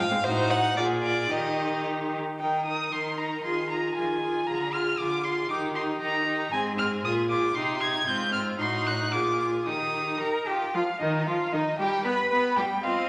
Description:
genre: quick classical-period movement for string quartet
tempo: 115 BPM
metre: 2/4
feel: straight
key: Eb major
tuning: A4 = 440 Hz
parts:
  - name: rich violin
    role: melody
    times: 0.0-13.1 s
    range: C4 to Ab6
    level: -31 LUFS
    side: equal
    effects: none
  - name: rich violin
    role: second line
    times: 0.0-13.1 s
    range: Eb4 to F#5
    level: -34 LUFS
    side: equal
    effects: none
  - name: clear viola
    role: accompaniment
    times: 0.0-13.1 s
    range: Eb3 to F4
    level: -32 LUFS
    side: equal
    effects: none
  - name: warm cello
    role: bass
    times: 0.0-13.1 s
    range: Ab2 to B4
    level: -35 LUFS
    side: equal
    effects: none
room: wet recital hall reverb, RT60 1.7 s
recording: none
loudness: -27 LUFS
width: mono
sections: 0.0-2.4 A section; 2.4-10.7 A section; 10.7-13.1 B section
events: none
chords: 0.2 Adim7; 0.8 Bb7; 1.3 Eb; 3.4 Fm7/Eb; 4.5 Dm7b5; 5.5 Eb; 6.5 Ab; 7.0 Bb7; 7.6 Cm; 8.1 Fm/Ab; 8.6 Adim7; 9.1 Bb7; 9.7 Eb; 10.7 Ebsus2; 11.8 G

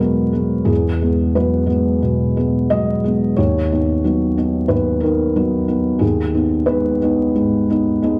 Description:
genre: neoclassical minimalist piano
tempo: 90 BPM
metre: 4/4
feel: rubato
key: unclear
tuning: A4 = 440 Hz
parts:
  - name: felt-muted upright piano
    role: solo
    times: 0.0-8.2 s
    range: D#2 to D#5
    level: -17 LUFS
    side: equal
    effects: none
room: moderate recital hall reverb, RT60 1.5 s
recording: dark, warm production, vinyl crackle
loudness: -17 LUFS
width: mono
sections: 0.0-8.2 A section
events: none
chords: 0.0 Eadd9; 3.4 B/D#; 6.0 G#m/D#

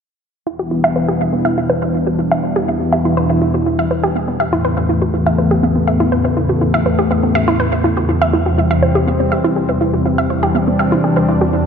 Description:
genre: techno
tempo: 122 BPM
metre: 4/4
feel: straight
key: E minor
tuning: A4 = 440 Hz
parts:
  - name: lush unison pad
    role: sustained chords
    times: 0.5-11.7 s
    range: E2 to D4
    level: -19 LUFS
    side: equal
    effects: chorus
  - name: wide unison pluck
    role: arpeggios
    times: 0.5-11.6 s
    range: B3 to E5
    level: -17 LUFS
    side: right 2 dB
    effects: tape echo
  - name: brassy analog pad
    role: stabs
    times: 0.5-11.7 s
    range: E2 to E4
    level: -18 LUFS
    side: left 1 dB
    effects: chorus, tremolo, tape echo
room: wet plate reverb, RT60 3.1 s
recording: dreamy mix soaked in reverb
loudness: -13 LUFS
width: side -7 dB against mid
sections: 0.5-11.7 A section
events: filter sweep on analog synth pad 0.5-11.7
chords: 0.5 Em7; 4.4 Aadd9/E; 8.3 C/E

